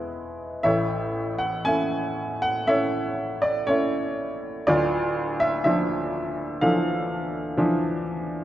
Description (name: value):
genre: classical, lyrical solo piano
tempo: 60 BPM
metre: 4/4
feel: rubato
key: A major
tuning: A4 = 445 Hz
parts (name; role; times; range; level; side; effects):
- clear upright piano; solo; 0.0-8.4 s; D1 to G#5; -22 LUFS; equal; none
room: moderate concert hall reverb, RT60 2.2 s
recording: none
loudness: -22 LUFS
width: side -13 dB against mid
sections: 0.6-8.4 A section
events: none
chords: 0.0 E; 0.6 A; 4.7 Dmadd9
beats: | 0.64 1.65 2.66 3.67 | 4.67 5.64 6.61 7.58